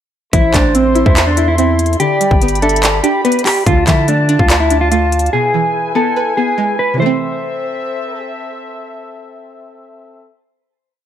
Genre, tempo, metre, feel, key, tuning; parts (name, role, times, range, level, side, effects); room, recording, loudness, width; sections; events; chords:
hip hop, trap; 144 BPM; 4/4; half-time; A minor; A4 = 440 Hz
mellow electric guitar; melody; 0.3-8.2 s; C4 to C5; -15 LUFS; equal; lush chorus
breathy flute-like synth lead; second line; 0.3-2.8 s; C5 to G5; -22 LUFS; left 1 dB; chorus, phaser, ping-pong delay
string-like resonator pluck; accompaniment; 0.3-10.4 s; B2 to E5; -18 LUFS; right 1 dB; chorus
warm brass ensemble; sustained chords; 0.3-10.3 s; C4 to C6; -24 LUFS; left 2 dB
long sustained 808-style bass; bass; 0.3-5.3 s; G1 to D3; -16 LUFS; equal
trap drum kit; drums; 0.3-5.3 s; handclaps, hi-hat, kick drum; -14 LUFS; equal
light reverb, digital ambience; -11 LUFS; side -10 dB against mid
0.3-7.0 hook; 7.0-10.3 final chord
0.3 Am; 2.0 G; 3.7 Dm; 5.3 E; 7.0 Am